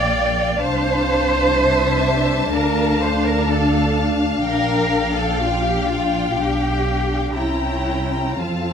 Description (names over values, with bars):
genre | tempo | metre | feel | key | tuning
classical, slow romantic movement for string orchestra | 56-65 BPM | 4/4 | rubato | unclear | A4 = 440 Hz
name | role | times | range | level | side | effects
rich studio violin section | melody | 0.0-8.7 s | G5 to Bb5 | -27 LUFS | left 4 dB | none
warm studio violin section | second line | 0.0-8.7 s | E5 to G5 | -25 LUFS | left 4 dB | none
dark studio viola section | accompaniment | 0.0-8.7 s | Bb3 to D4 | -23 LUFS | left 2 dB | none
warm studio cello section | bass | 0.0-8.7 s | E4 to D5 | -21 LUFS | right 2 dB | none
warm studio double bass section | bass | 0.0-8.7 s | Bb1 to F2 | -22 LUFS | right 1 dB | none
room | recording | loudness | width
moderate recital hall reverb, RT60 1.4 s | none | -16 LUFS | side -7 dB against mid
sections
0.0-8.7 A section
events
none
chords
0.0 Gm7/Bb; 0.6 C69; 2.5 Dm; 4.5 Gm7/Bb; 6.4 G7/B; 7.3 C7b9